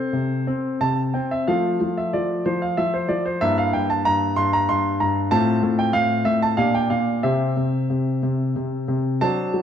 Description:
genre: classical-period piano sonatina.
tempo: 93 BPM.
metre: 3/4.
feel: uneven beats, rubato.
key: F major.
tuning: A4 = 443 Hz.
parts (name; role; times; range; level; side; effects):
clear baby grand piano; solo; 0.0-9.6 s; G2 to C6; -19 LUFS; equal; none.
room: wet recital hall reverb, RT60 1.5 s.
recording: dark, warm production.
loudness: -19 LUFS.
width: side -8 dB against mid.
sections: 0.0-1.5 A section; 1.5-9.6 B section.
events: none.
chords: 0.0 Am/C; 1.5 F; 3.4 Edim/G; 5.3 F/A; 6.6 Gm7/Bb; 7.2 C.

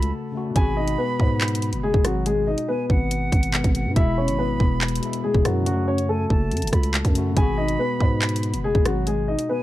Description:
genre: hip hop, drill.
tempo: 141 BPM.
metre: 4/4.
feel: half-time.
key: G# phrygian.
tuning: A4 = 440 Hz.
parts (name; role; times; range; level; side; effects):
dark concert grand piano; melody; 0.0-9.6 s; F#3 to G#5; -25 LUFS; left 2 dB; low-pass filter.
silver concert flute; second line; 0.0-9.6 s; F#5 to B5; -32 LUFS; right 4 dB; digital delay.
overdriven tine electric piano; accompaniment; 0.0-9.6 s; B2 to F#4; -29 LUFS; left 3 dB; analog chorus, low-pass filter.
growling 808-style bass; bass; 0.0-9.4 s; E1 to G#2; -25 LUFS; equal; none.
drill drum kit; drums; 0.0-9.5 s; handclaps, hi-hat, kick drum, rim click; -21 LUFS; equal; none.
room: little or no reverb.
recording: dark, warm production.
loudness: -19 LUFS.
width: side -15 dB against mid.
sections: 0.6-9.6 A section.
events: break 0.1-0.6.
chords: 0.0 F#m; 0.6 G#m7; 4.0 E; 5.7 F#m; 7.4 G#m7.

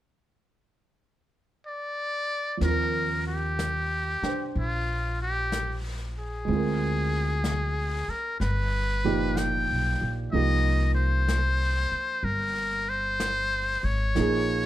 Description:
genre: jazz ballad.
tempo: 62 BPM.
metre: 4/4.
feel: swing 66% on 8ths.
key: Eb major.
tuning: A4 = 440 Hz.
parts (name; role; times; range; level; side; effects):
trumpet with metal mute; melody; 1.7-14.7 s; F4 to G5; -28 LUFS; left 1 dB; plate reverb.
dark baby grand piano; accompaniment; 2.6-14.7 s; A#2 to G5; -30 LUFS; right 4 dB; none.
upright bass; bass; 2.6-14.7 s; G1 to Eb2; -28 LUFS; equal; none.
jazz brush drum kit; drums; 2.6-14.7 s; brushed snare drum, hi-hat, snare drum; -38 LUFS; left 2 dB; none.
room: light reverb.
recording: none.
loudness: -24 LUFS.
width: side -13 dB against mid.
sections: 0.0-2.6 A section; 2.6-14.7 B section.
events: none.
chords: 0.0 N.C.; 2.6 Ebmaj9; 6.5 Dm7b5; 8.4 G7alt; 10.3 Cm7; 14.2 Bbm7.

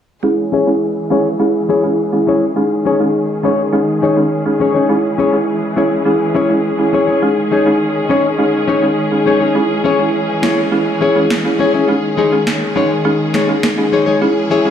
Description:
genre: dancehall.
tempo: 103 BPM.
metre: 4/4.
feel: straight.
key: C# minor.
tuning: A4 = 441 Hz.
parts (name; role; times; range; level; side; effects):
folk marimba with medium mallets; accompaniment; 0.2-14.7 s; G#3 to G#4; -16 LUFS; right 1 dB; low-pass filter.
clear studio string section; sustained chords; 0.2-14.7 s; D#3 to G#4; -20 LUFS; left 1 dB; low-pass filter.
nylon-string guitar; arpeggios; 0.5-14.7 s; G#3 to C#5; -16 LUFS; left 4 dB; low-pass filter, digital delay.
electronic snare drum; drums; 10.4-13.8 s; none; -21 LUFS; right 1 dB; none.
room: moderate lush hall reverb, RT60 3.0 s.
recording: studio reverb.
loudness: -12 LUFS.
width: side -9 dB against mid.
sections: 0.2-14.7 A section.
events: filter sweep 0.2-14.7.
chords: 0.2 C#m; 2.6 G#sus4; 4.9 C#m; 7.2 G#sus4; 9.6 C#m; 11.9 G#sus4.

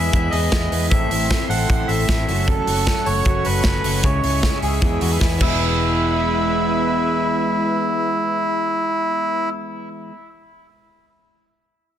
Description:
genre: jangly indie pop.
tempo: 154 BPM.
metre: 4/4.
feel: straight.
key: E major.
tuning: A4 = 440 Hz.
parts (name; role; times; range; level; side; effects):
melodica; melody; 0.0-9.5 s; E4 to F#5; -22 LUFS; equal; none.
electric guitar through a small old amp; accompaniment; 0.0-10.2 s; A2 to F#4; -27 LUFS; right 5 dB; none.
lush unison pad; sustained chords; 0.0-9.5 s; G#3 to C#6; -28 LUFS; right 1 dB; chorus.
direct-recorded clean electric guitar; arpeggios; 0.0-10.2 s; F#2 to A4; -28 LUFS; left 7 dB; analog chorus.
vintage muted fingered electric bass; bass; 0.0-10.1 s; E1 to E2; -24 LUFS; equal; none.
modern studio drum kit; drums; 0.1-5.5 s; crash cymbal, hi-hat, kick drum, snare drum; -21 LUFS; equal; none.
room: light reverb, studio reverb.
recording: dense, heavily limited modern master.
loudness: -17 LUFS.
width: side -10 dB against mid.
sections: 0.0-5.6 A section; 5.6-8.7 B section.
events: drum fill 5.2-5.6.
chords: 0.0 E; 0.9 Am; 2.3 F#m; 4.0 C#m; 4.8 E.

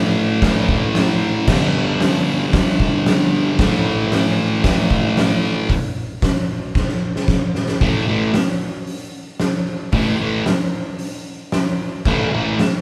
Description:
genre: garage rock duo or trio.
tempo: 114 BPM.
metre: 4/4.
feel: straight.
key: unclear.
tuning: A4 = 439 Hz.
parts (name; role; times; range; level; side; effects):
thick fuzz guitar; riff; 0.0-12.5 s; G2 to A3; -20 LUFS; equal; distortion.
oversized low-tuned drum kit; drums; 0.4-12.7 s; crash cymbal, hi-hat, kick drum, snare drum; -21 LUFS; equal; none.
room: moderate large studio reverb, RT60 1.2 s.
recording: band playing live in one room.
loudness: -18 LUFS.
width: mono.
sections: 0.0-5.7 A section; 5.7-7.8 B section; 7.8-12.8 C section.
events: drum fill 6.8-7.8.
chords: 0.0 A5; 1.5 G5; 3.6 A5; 5.7 N.C.; 7.8 A5.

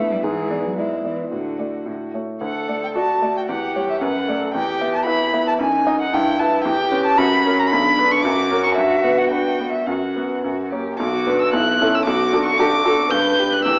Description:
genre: quick classical-period movement for piano trio.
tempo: 113 BPM.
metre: 2/4.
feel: rubato.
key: D major, B minor from 6.7 s.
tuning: A4 = 440 Hz.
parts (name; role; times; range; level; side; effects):
dark violin; melody; 0.0-13.8 s; E4 to G6; -23 LUFS; equal; none.
rich cello; second line; 0.0-13.8 s; D3 to B4; -26 LUFS; equal; none.
clear grand piano; accompaniment; 0.0-13.8 s; B1 to E5; -23 LUFS; equal; none.
room: moderate scoring stage reverb, RT60 1.6 s.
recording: worn, warbling old tape, cassette tape, warbly pitch drift, small speaker sound.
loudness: -19 LUFS.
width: mono.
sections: 0.0-2.4 A section; 2.4-11.0 A section; 11.0-13.8 B section.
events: none.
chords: 0.2 E7/G#; 1.3 D/A; 1.9 A; 2.4 D; 3.5 C#dim/E; 4.0 D/F#; 4.5 Em; 5.6 Ebmadd11/Gb; 6.1 Em/G; 6.7 C#m7b5/E; 7.2 F#; 7.7 Bm; 8.2 F#; 8.8 G; 9.9 B5/F#; 10.4 F#; 11.0 Bm; 11.5 A/B; 12.1 D/B; 13.1 G.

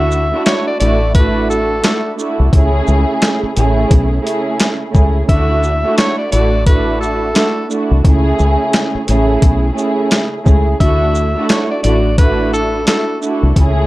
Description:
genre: hip hop, boom-bap hip-hop.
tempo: 87 BPM.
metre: 4/4.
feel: swing 59% on 16ths.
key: unclear.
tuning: A4 = 440 Hz.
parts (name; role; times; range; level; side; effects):
warm tenor saxophone; melody; 0.0-13.2 s; A4 to E5; -19 LUFS; left 1 dB; high-pass filter, low-pass filter, plate reverb, tape echo.
dark studio string section; accompaniment; 0.0-13.9 s; C#3 to G#4; -16 LUFS; right 2 dB; high-pass filter, low-pass filter, plate reverb.
deep dub fingered electric bass; bass; 0.0-13.8 s; A1 to D2; -15 LUFS; equal; none.
boom bap sampler-style drum kit; drums; 0.1-13.8 s; handclaps, hi-hat, kick drum, shaker, snare drum; -13 LUFS; equal; none.
room: light reverb.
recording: none.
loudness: -11 LUFS.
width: side -18 dB against mid.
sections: 0.0-13.9 A section.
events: none.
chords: 0.0 Dadd9; 2.5 Amaj7; 5.3 Dadd9; 8.0 Amaj7; 10.8 Dadd9.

